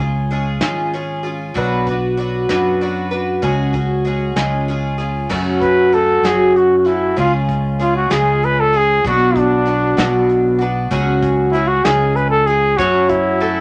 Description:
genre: acoustic folk duo or small band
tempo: 64 BPM (dotted quarters)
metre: 6/8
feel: straight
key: F# minor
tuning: A4 = 439 Hz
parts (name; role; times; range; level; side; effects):
- picked twelve-string acoustic guitar; accompaniment; 0.0-13.6 s; F#2 to B4; -20 LUFS; equal; none
- fingered electric bass; bass; 0.0-13.6 s; G#1 to F#2; -23 LUFS; equal; none
- soft brush drum kit; drums; 0.3-13.6 s; crash cymbal, hi-hat, kick drum, snare drum; -26 LUFS; equal; none
- warm trumpet; melody; 5.6-13.6 s; D4 to B4; -18 LUFS; equal; none
- mandolin; arpeggios; 12.8-13.6 s; A4 to C#5; -21 LUFS; equal; none
room: wet small room reverb, RT60 0.5 s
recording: none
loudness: -16 LUFS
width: mono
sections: 0.0-5.3 A section; 5.3-13.6 B section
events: trumpet solo 5.3-13.6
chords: 0.0 C#; 1.6 Bm; 3.4 C#sus4; 4.4 C#; 5.3 F#m; 7.2 C#; 9.0 Bm; 10.9 C#sus4; 11.8 C#; 12.8 F#m

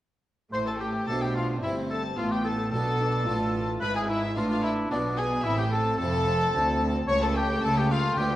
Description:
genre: classical, baroque-style concerto movement with solo episodes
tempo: 110 BPM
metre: 3/4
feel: straight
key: A minor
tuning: A4 = 440 Hz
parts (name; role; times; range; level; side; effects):
- rich chamber violin section; melody; 0.5-8.4 s; D5 to C#6; -34 LUFS; left 2 dB; none
- warm oboe; melody; 0.5-8.4 s; D4 to C#5; -31 LUFS; left 1 dB; none
- warm chamber violin section; second line; 0.5-8.4 s; D4 to C#5; -31 LUFS; left 1 dB; none
- dark chamber viola section; accompaniment; 0.5-8.4 s; A3 to F4; -33 LUFS; right 1 dB; none
- harpsichord; accompaniment; 0.5-8.4 s; C#2 to F4; -34 LUFS; equal; none
- rich chamber cello section; bass; 0.5-8.4 s; C#2 to C#3; -31 LUFS; right 1 dB; none
- rich chamber double bass section; bass; 0.5-8.4 s; F1 to D2; -33 LUFS; right 2 dB; none
room: wet recital hall reverb, RT60 1.4 s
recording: worn, warbling old tape, cassette tape, warbly pitch drift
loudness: -24 LUFS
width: side -14 dB against mid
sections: 0.5-8.4 A section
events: none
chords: 0.5 Am; 2.2 Bm7b5/A; 3.8 G#dim7; 5.5 Am; 7.1 A/C#

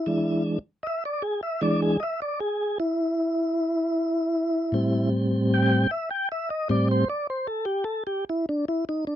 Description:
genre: blues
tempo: 51 BPM (dotted quarters)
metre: 12/8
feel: straight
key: A minor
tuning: A4 = 441 Hz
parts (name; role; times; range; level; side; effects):
- mellow tonewheel organ; sustained chords; 0.0-9.2 s; A2 to G5; -23 LUFS; equal; slow rotary speaker
room: light reverb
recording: dry, close 1970s-style studio recording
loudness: -23 LUFS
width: side -11 dB against mid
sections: 0.0-9.2 A section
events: tonewheel organ solo 0.0-9.2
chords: 0.1 E7; 4.7 Am7

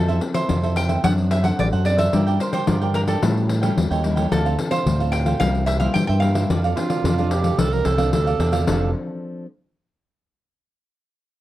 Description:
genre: samba and choro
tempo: 110 BPM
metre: 4/4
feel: straight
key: F major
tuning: A4 = 441 Hz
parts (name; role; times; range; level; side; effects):
- lap resonator guitar; melody; 0.0-8.1 s; A4 to G5; -25 LUFS; right 1 dB; none
- cavaquinho; accompaniment; 0.0-8.9 s; D4 to G5; -28 LUFS; right 8 dB; none
- nylon-string guitar; accompaniment; 0.0-9.5 s; G2 to Bb4; -26 LUFS; left 2 dB; none
- fingered electric bass with an envelope filter; bass; 0.0-8.9 s; F1 to A2; -21 LUFS; right 1 dB; none
- pandeiro; percussion; 0.1-8.8 s; none; -24 LUFS; left 4 dB; none
- breathy tenor saxophone; second line; 6.8-8.9 s; F4 to Bb4; -24 LUFS; right 5 dB; none
room: little or no reverb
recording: dry, close 1970s-style studio recording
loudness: -18 LUFS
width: side -14 dB against mid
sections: 0.0-8.7 A section; 8.7-10.9 B section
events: none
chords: 0.0 Fmaj7; 1.0 D7/F#; 2.1 Gm7; 3.2 A7; 4.3 Dm7; 5.4 C7; 6.5 F6

